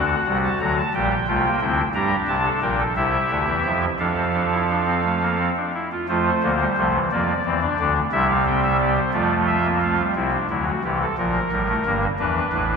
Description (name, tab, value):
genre	classical, baroque-style 4-part fugue for pipe organ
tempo	59 BPM (dotted quarters)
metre	6/8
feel	straight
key	F major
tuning	A4 = 440 Hz
part	pipe organ, soft reed	solo	0.0-12.8 s	G1 to Bb5	-19 LUFS	equal	none
room	wet church reverb, RT60 3.7 s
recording	minimal, uncompressed stereo recording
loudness	-19 LUFS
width	side -5 dB against mid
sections	0.0-6.1 A section; 6.1-10.2 B section; 10.2-12.8 A section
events	none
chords	0.0 D7; 0.9 Gm/Bb; 1.9 Gm; 3.0 C; 4.0 F; 7.1 Dm9; 8.1 C; 9.1 F; 10.2 D7/C; 11.2 Gm; 12.2 E7(no3)